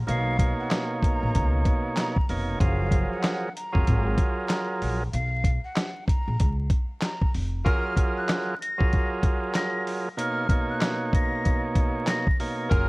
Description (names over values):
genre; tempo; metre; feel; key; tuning
hip hop, boom-bap hip-hop; 95 BPM; 4/4; swing 62% on 16ths; unclear; A4 = 440 Hz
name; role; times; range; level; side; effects
upright bass; bass; 0.0-7.6, 12.7-12.9 s; E#1 to C#2; -26 LUFS; equal; none
breathy jazz flute; melody; 0.1-12.9 s; E#5 to A#6; -33 LUFS; left 1 dB; high-pass filter, low-pass filter, ping-pong delay
overdriven tonewheel organ; accompaniment; 0.1-12.9 s; B2 to C#5; -28 LUFS; right 2 dB; cassette tape, high-pass filter, low-pass filter
dusty soul sampler-style drum kit; drums; 0.1-12.9 s; handclaps, hi-hat, kick drum, snare drum; -24 LUFS; equal; none
clear saxophone section; stabs; 7.6-7.9, 12.7-12.9 s; C#4 to A#4; -33 LUFS; left 2 dB; high-pass filter, low-pass filter, ping-pong delay
room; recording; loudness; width
small room ambience; worn, warbling old tape, cassette tape, vinyl crackle, warbly pitch drift; -23 LUFS; side -24 dB against mid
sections
0.0-7.7 A section; 7.7-12.9 B section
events
none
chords
0.1 Bmaj9; 2.6 F#maj9; 5.1 Bsus2; 7.7 F#maj9; 10.2 Bmaj9